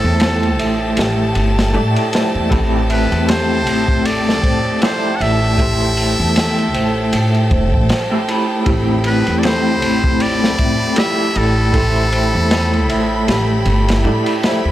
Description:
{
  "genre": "trip hop",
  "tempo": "78 BPM",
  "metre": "4/4",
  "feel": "swing 58% on 16ths",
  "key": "A minor",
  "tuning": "A4 = 440 Hz",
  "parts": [
    { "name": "trumpet with metal mute", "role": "melody", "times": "0.0-13.7 s", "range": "A4 to F#5", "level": "-22 LUFS", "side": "equal", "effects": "tape echo" },
    { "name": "electric guitar through a small old amp", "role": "accompaniment", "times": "0.0-14.7 s", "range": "A3 to B5", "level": "-19 LUFS", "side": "equal", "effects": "tremolo, tape echo" },
    { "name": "rich studio violin section", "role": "sustained chords", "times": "0.0-14.7 s", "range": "A4 to B5", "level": "-23 LUFS", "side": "equal", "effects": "none" },
    { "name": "large celesta", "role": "arpeggios", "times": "0.0-14.7 s", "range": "G4 to E5", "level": "-25 LUFS", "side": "right 1 dB", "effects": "analog delay" },
    { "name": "upright bass", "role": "bass", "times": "0.0-14.7 s", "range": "E1 to A2", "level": "-18 LUFS", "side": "equal", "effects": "none" },
    { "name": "crunchy breakbeat drum kit", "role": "drums", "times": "0.2-14.6 s", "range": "kick drum, ride cymbal, snare drum", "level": "-20 LUFS", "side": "equal", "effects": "vintage 12-bit sampler grit" },
    { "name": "backwards swelling texture", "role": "texture", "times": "10.1-14.7 s", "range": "E4", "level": "-30 LUFS", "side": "equal", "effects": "none" }
  ],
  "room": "small room ambience",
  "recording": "dry, gritty hardware recording, transformer saturation",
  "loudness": "-13 LUFS",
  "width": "side -13 dB against mid",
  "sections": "0.0-14.7 A section",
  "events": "none",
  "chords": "0.0 Am7"
}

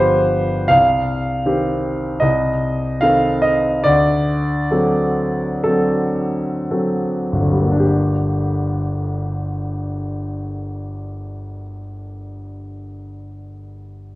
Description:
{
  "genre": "classical, romantic nocturne for solo piano",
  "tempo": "26-41 BPM",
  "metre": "4/4",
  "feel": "rubato",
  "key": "G minor",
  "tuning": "A4 = 440 Hz",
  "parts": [
    { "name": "warm grand piano", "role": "solo", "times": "0.0-14.2 s", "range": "G1 to F5", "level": "-17 LUFS", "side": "equal", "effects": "none" }
  ],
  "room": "wet recital hall reverb, RT60 1.4 s",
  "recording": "worn, warbling old tape, cassette tape, warbly pitch drift",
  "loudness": "-16 LUFS",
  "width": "side -18 dB against mid",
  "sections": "0.0-7.8 A section; 7.8-14.2 B section",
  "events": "slowing down 0.0-7.8",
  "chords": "0.0 G7; 0.7 Cm; 2.2 Adim/C; 3.9 D7; 7.8 Gm"
}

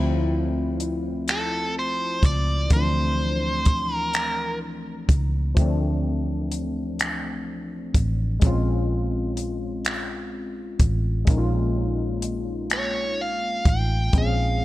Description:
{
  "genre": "slow six-eight R&B",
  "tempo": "42 BPM (dotted quarters)",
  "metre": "6/8",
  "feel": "straight",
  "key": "unclear",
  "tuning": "A4 = 440 Hz",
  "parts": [
    { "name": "overdriven tine electric piano", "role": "accompaniment", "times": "0.0-14.6 s", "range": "E3 to Ab4", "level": "-28 LUFS", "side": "left 2 dB", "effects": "analog chorus" },
    { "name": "vintage muted fingered electric bass", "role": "bass", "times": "0.0-14.6 s", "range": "A1 to D2", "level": "-25 LUFS", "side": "equal", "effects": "none" },
    { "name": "compact cocktail drum kit", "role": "drums", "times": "0.8-14.4 s", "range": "finger snaps, hi-hat, kick drum", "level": "-22 LUFS", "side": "equal", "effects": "vintage 12-bit sampler grit" },
    { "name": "biting lead guitar", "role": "melody", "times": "1.3-4.6, 12.7-14.6 s", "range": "A4 to G5", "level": "-26 LUFS", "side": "right 1 dB", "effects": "overdrive" }
  ],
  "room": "studio ambience",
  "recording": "none",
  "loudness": "-21 LUFS",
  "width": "side -16 dB against mid",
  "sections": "0.0-14.6 A section",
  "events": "none",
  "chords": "0.0 Dm9; 8.4 Bbm9"
}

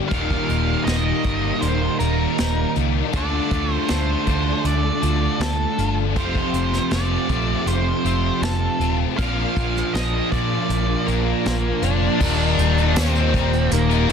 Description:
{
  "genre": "rock, shoegaze and dream pop",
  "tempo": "79 BPM",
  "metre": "4/4",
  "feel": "straight",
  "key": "Eb lydian",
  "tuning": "A4 = 440 Hz",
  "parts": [
    { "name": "direct-recorded clean electric guitar", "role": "arpeggios", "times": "0.0-14.1 s", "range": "Eb2 to A4", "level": "-30 LUFS", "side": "left 9 dB", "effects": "ensemble chorus, slapback echo" },
    { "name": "distorted electric guitar", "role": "riff", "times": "0.0-14.1 s", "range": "Eb2 to D4", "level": "-27 LUFS", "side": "equal", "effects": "overdrive" },
    { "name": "overdriven electric guitar", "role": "riff", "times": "0.0-14.1 s", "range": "Eb2 to A4", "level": "-26 LUFS", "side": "left 14 dB", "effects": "ensemble chorus" },
    { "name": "overdriven electric guitar", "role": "riff", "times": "0.0-12.2 s", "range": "Eb2 to A4", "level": "-26 LUFS", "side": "right 11 dB", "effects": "reverse reverb" },
    { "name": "octave-fuzz lead guitar", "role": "melody", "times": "0.1-14.1 s", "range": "Bb3 to F5", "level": "-26 LUFS", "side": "right 3 dB", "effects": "distortion, slapback echo" },
    { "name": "vintage muted fingered electric bass", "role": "bass", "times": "0.1-14.1 s", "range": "Eb1 to Bb2", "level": "-23 LUFS", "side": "equal", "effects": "none" },
    { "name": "vintage brush drum kit", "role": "drums", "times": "0.1-14.1 s", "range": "crash cymbal, hi-hat, kick drum, snare drum", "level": "-27 LUFS", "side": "equal", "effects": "none" },
    { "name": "tambourine", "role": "percussion", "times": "13.0-13.1 s", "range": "none", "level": "-35 LUFS", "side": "right 7 dB", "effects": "none" }
  ],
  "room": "small room ambience",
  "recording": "dense, heavily limited modern master",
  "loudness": "-18 LUFS",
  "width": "side -7 dB against mid",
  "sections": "0.0-12.2 A section; 12.2-14.1 B section",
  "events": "none",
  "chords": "0.1 Eb; 3.1 Dm; 6.2 F; 9.2 Bb; 12.2 Ebmaj7"
}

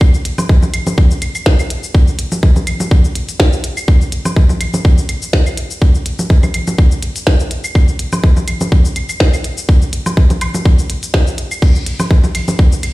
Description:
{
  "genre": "techno",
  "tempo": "124 BPM",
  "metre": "4/4",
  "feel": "swing 55% on 16ths",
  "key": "none",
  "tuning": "none",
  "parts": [
    { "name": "electronic kick drum", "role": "drums", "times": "0.0-12.7 s", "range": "none", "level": "-9 LUFS", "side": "equal", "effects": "none" },
    { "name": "claves, congas and woodblock", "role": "percussion", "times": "0.0-12.9 s", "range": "none", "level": "-20 LUFS", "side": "equal", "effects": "ping-pong delay" },
    { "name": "minimal click drum kit", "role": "drums", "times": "0.1-12.9 s", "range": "cabasa, crash cymbal, hi-hat, ride cymbal, snare drum", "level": "-21 LUFS", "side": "left 1 dB", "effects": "none" }
  ],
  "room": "little or no reverb",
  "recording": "played on a big sound system in a bare room, large studio reverb",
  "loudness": "-11 LUFS",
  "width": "side -19 dB against mid",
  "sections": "0.0-12.9 A section",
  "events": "none",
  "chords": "none"
}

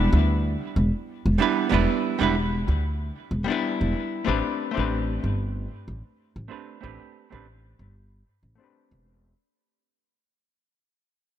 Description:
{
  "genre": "sunset chillout",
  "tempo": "94 BPM",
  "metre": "4/4",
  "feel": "swing 54% on 16ths",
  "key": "unclear",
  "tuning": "A4 = 440 Hz",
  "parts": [
    { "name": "archtop guitar, miked and amplified", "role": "accompaniment", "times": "0.0-9.4 s", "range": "G3 to B4", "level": "-26 LUFS", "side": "moving between left 6 dB and right 9 dB", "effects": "auto-pan, low-pass filter, ping-pong delay" },
    { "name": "upright bass", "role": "bass", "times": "0.0-9.3 s", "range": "E1 to D2", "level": "-23 LUFS", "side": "equal", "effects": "none" }
  ],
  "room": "light reverb, small room ambience",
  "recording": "none",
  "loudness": "-22 LUFS",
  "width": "side -10 dB against mid",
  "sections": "0.0-9.4 A section",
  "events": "fade-out 0.0-9.4",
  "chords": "0.0 Em7; 4.3 Am11"
}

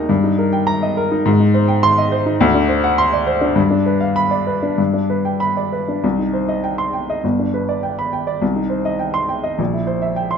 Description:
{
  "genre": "classical, virtuoso piano study",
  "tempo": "102 BPM",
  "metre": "2/4",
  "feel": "rubato",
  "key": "C minor",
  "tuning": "A4 = 439 Hz",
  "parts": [
    { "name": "warm baby grand piano", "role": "solo", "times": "0.0-10.4 s", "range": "G1 to C6", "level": "-15 LUFS", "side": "equal", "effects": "none" }
  ],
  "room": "moderate large studio reverb, RT60 0.9 s",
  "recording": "nothing above 7.5 kHz",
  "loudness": "-15 LUFS",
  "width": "side -7 dB against mid",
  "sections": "0.0-6.0 A section; 6.0-10.4 B section",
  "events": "none",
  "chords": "0.1 Eb/G; 1.3 Abmaj7; 2.4 D7; 3.6 G7; 4.8 G; 6.0 Cm; 7.2 G; 8.4 Cm; 9.6 C7/Bb"
}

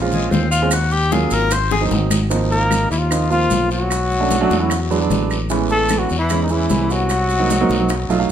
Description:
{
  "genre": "Afro-Cuban jazz",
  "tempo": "150 BPM",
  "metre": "4/4",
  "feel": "straight",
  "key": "unclear",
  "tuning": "A4 = 440 Hz",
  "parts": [
    { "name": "warm grand piano", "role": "accompaniment", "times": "0.0-8.3 s", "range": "E3 to E#5", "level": "-20 LUFS", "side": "right 5 dB", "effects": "none" },
    { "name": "fingered electric bass", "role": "bass", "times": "0.0-8.3 s", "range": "Ab1 to Fb2", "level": "-20 LUFS", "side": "left 1 dB", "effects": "none" },
    { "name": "clear tenor saxophone", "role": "second line", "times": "0.1-8.3 s", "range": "Eb3 to C5", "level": "-24 LUFS", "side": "left 3 dB", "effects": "none" },
    { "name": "bongos", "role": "percussion", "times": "0.1-8.3 s", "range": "none", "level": "-28 LUFS", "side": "left 7 dB", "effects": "none" },
    { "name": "congas", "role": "percussion", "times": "0.1-8.3 s", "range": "none", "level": "-26 LUFS", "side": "equal", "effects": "none" },
    { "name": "maracas", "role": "percussion", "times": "0.1-8.3 s", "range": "none", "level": "-30 LUFS", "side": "right 4 dB", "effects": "none" },
    { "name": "guiro", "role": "percussion", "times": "0.3-8.3 s", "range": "none", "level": "-31 LUFS", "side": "left 5 dB", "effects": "none" },
    { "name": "claves", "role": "percussion", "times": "0.7-8.1 s", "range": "none", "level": "-32 LUFS", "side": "right 5 dB", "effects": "none" },
    { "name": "breathy trumpet", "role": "melody", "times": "2.5-8.3 s", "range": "Eb4 to Bb4", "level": "-20 LUFS", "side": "left 2 dB", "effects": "none" }
  ],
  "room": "moderate large studio reverb, RT60 1.0 s",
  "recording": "none",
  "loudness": "-15 LUFS",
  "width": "side -9 dB against mid",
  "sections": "0.0-2.3 A section; 2.3-8.3 B section",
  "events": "tenor saxophone solo 0.0-2.3; drum fill 1.7-2.3; grand piano fill 8.1",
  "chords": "0.0 Bbm9; 0.7 Ebm7; 1.5 Ab7; 2.3 Ab69; 3.9 Bm7; 4.7 E7; 5.5 Amaj7; 7.1 Cm7b5"
}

